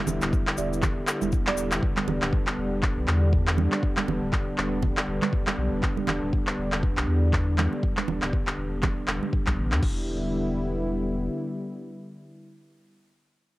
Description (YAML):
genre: afro house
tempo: 120 BPM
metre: 4/4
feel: swing 57% on 16ths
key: E minor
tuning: A4 = 440 Hz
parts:
  - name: warm analog pad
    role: sustained chords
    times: 0.0-12.9 s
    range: D3 to E4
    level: -29 LUFS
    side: equal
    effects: chorus, sidechain pumping, cassette tape
  - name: warm sub bass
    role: bass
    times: 0.1-11.3 s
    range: D1 to E2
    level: -28 LUFS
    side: equal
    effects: sidechain pumping
  - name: cabasa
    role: percussion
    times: 0.1-1.8 s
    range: none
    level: -38 LUFS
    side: left 8 dB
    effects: none
  - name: congas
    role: percussion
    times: 0.1-9.6 s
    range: none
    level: -31 LUFS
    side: right 7 dB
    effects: none
  - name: afro-pop drum kit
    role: drums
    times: 0.2-9.9 s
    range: crash cymbal, handclaps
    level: -30 LUFS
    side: equal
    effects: cassette tape
  - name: electronic kick drum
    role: drums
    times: 0.3-9.9 s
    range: none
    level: -26 LUFS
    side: equal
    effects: cassette tape
  - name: deep mellow chord stab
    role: stabs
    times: 0.6-1.7 s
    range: G3 to D5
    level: -34 LUFS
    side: right 6 dB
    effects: chorus, sidechain pumping, cassette tape, analog delay
room: light reverb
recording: home recording on cassette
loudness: -23 LUFS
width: side -18 dB against mid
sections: 0.0-9.8 A section; 9.8-13.6 B section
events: none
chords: 0.0 Em7